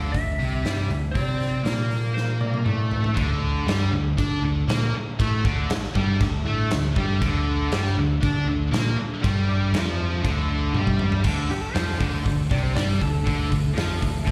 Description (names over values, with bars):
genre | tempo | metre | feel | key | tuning
hard rock | 119 BPM | 4/4 | straight | D minor | A4 = 436 Hz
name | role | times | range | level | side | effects
lightly driven lead guitar | melody | 0.0-2.9, 11.5-14.3 s | G4 to F5 | -36 LUFS | equal | slapback echo, plate reverb
distorted electric guitar | riff | 0.0-14.3 s | C3 to D4 | -32 LUFS | equal | distortion, slapback echo
tight distorted guitar | riff | 0.0-14.3 s | C3 to D4 | -35 LUFS | equal | distortion, slapback echo
picked electric bass | bass | 0.0-14.3 s | C2 to D3 | -26 LUFS | equal | none
big rock drum kit | drums | 0.1-14.3 s | crash cymbal, hi-hat, kick drum, snare drum, toms | -29 LUFS | equal | none
heavy high-gain guitar | riff | 3.1-14.3 s | C3 to D4 | -36 LUFS | equal | distortion, slapback echo
phased analog pad | sustained chords | 4.1-14.3 s | D4 to E5 | -41 LUFS | equal | none
room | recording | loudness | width
light reverb | live gig heard through the venue's PA, recital hall reverb | -23 LUFS | mono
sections
0.0-3.2 A section; 3.2-11.2 B section; 11.2-14.3 C section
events
drum fill 2.2-3.2, 10.7-11.2; lead electric guitar solo 11.2-14.3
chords
0.0 D5; 3.2 Dm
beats
0.14 0.65 | 1.15 1.66 2.16 2.67 | 3.17 3.67 4.18 4.68 | 5.19 5.69 6.20 6.70 | 7.21 7.71 8.22 8.72 | 9.23 9.73 10.24 10.74 | 11.25 11.76 12.26 12.77 | 13.27 13.78 14.28